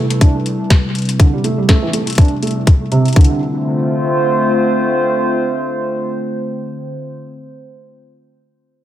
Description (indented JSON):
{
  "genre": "IDM",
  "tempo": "122 BPM",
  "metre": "4/4",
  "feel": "swing 56% on 16ths",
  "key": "D dorian",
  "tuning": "A4 = 437 Hz",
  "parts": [
    { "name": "hollow soft pad", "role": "sustained chords", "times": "0.0-7.3 s", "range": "C3 to C5", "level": "-17 LUFS", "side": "equal", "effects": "chorus, sidechain pumping" },
    { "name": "felt-muted upright piano", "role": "arpeggios", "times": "0.0-3.4 s", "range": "C3 to D4", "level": "-18 LUFS", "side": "right 3 dB", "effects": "low-pass filter, dub echo" },
    { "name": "booming analog drum machine", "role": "drums", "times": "0.1-3.3 s", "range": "hi-hat, snare drum", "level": "-22 LUFS", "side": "left 2 dB", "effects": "small room ambience, analog delay" },
    { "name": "electronic kick drum", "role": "drums", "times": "0.2-3.3 s", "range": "none", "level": "-9 LUFS", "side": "left 1 dB", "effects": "small room ambience" }
  ],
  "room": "moderate echo chamber reverb, RT60 1.7 s, digital ambience",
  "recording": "echo-heavy mix",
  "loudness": "-12 LUFS",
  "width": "side -12 dB against mid",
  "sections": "0.0-3.2 A section; 3.2-7.1 B section",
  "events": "filter sweep on analog synth pad 0.0-3.2; filter sweep on felt piano 0.0-3.2",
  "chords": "0.0 Cmaj7; 3.2 Dm7",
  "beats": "0.21 0.70 | 1.20 1.69 2.18 2.67 | 3.16 3.65 4.15 4.64 | 5.13 5.62 6.11 6.61"
}